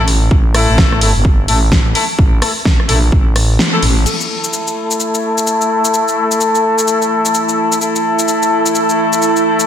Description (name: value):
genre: bass house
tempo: 128 BPM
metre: 4/4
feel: swing 61% on 16ths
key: unclear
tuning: A4 = 443 Hz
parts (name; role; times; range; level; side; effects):
- warm horn section; stabs; 0.0-9.7 s; A3 to A4; -15 LUFS; left 2 dB; sidechain pumping, low-pass filter, dub echo
- growling FM bass; bass; 0.0-4.0 s; G1 to Bb1; -14 LUFS; equal; tube saturation, sidechain pumping
- big-room dance drum kit; drums; 0.1-9.7 s; crash cymbal, hi-hat, rim click, shaker, snare drum; -18 LUFS; left 1 dB; studio reverb
- electronic kick drum; drums; 0.3-3.2 s; none; -12 LUFS; equal; studio reverb
- deep dark ambient pad; texture; 6.5-9.7 s; E4 to A5; -18 LUFS; right 3 dB; chorus, built-in reverb, sidechain pumping
room: moderate lush hall reverb, RT60 1.9 s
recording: dense, heavily limited modern master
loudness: -11 LUFS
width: side -9 dB against mid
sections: 0.0-4.1 A section; 4.1-9.7 B section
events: kick drops out 3.6-4.1; band accent 3.6; filter sweep on horn section 4.1-9.7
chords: 0.0 A5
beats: | 0.31 0.78 1.25 1.72 | 2.19 2.65 3.12 3.59 | 4.06 4.53 5.00 5.47 | 5.94 6.40 6.87 7.34 | 7.81 8.28 8.75 9.22